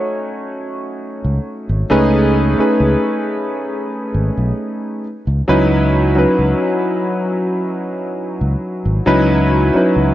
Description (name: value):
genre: vaporwave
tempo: 67 BPM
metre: 4/4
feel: straight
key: C# minor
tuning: A4 = 437 Hz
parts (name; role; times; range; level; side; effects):
- warm electric grand piano; accompaniment; 0.0-10.1 s; F#3 to C#5; -16 LUFS; equal; wide subtle chorus, analog delay
- fingered electric bass; bass; 1.2-10.1 s; G#1 to C#2; -16 LUFS; equal; none
room: moderate lush hall reverb, RT60 3.0 s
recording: dark, warm production, cassette tape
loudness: -14 LUFS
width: side -13 dB against mid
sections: 0.0-10.1 A section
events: none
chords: 0.0 D#m7b5; 1.9 B13/C#; 5.0 C#m11